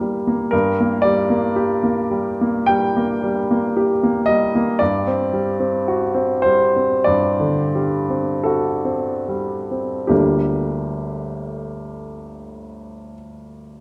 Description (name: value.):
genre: classical, romantic nocturne for solo piano.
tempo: 33-60 BPM.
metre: 4/4.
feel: rubato.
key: G minor.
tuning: A4 = 440 Hz.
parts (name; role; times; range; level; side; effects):
clear baby grand piano; solo; 0.0-13.8 s; G1 to G5; -20 LUFS; equal; none.
room: moderate recital hall reverb, RT60 1.4 s.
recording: none.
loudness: -19 LUFS.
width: mono.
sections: 0.5-10.1 A section; 10.1-13.8 B section.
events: slowing down 0.0-10.1.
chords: 0.0 Gm; 4.8 D7/G; 10.1 Gm.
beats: | 0.52 1.55 2.69 3.76 | 4.80 5.86 7.07 8.46 | 10.10 11.49 12.92.